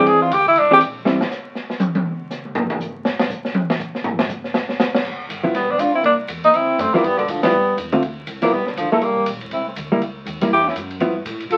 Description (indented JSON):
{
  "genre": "jazz, small-group swing and bop",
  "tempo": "241 BPM",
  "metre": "4/4",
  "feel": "swing 60% on 8ths",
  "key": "G mixolydian",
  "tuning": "A4 = 443 Hz",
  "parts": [
    { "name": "mellow tenor saxophone", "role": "melody", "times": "0.0-0.8, 5.6-11.6 s", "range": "D3 to A4", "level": "-18 LUFS", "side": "equal", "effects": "none" },
    { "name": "hollow-body jazz guitar", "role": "accompaniment", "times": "0.0-1.2, 5.4-11.1 s", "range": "D3 to A4", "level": "-21 LUFS", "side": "equal", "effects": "none" },
    { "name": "upright bass", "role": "bass", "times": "0.0-1.2, 5.0-11.6 s", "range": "E1 to A2", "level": "-36 LUFS", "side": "equal", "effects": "none" },
    { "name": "open jazz drum kit", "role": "drums", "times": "0.1-11.6 s", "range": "crash cymbal, hi-hat, kick drum, ride cymbal, snare drum, toms", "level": "-26 LUFS", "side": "equal", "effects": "none" },
    { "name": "mellow trombone", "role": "second line", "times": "5.6-11.6 s", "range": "B2 to F4", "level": "-28 LUFS", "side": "equal", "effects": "none" }
  ],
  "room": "wet studio ambience, RT60 0.4 s",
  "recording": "very old 78 rpm record, vinyl crackle",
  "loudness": "-19 LUFS",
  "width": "mono",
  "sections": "0.0-5.0 A section; 5.0-11.6 B section",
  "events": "tenor saxophone solo 0.0-5.0; drum solo 1.1-5.0; band accent 7.4",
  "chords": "0.1 Eaug7; 1.1 Am7; 2.1 N.C.; 5.0 Gadd9; 6.0 Cadd9; 7.0 G13; 8.0 Dm7; 8.5 G13; 9.0 C9; 10.0 C#m; 11.0 G13"
}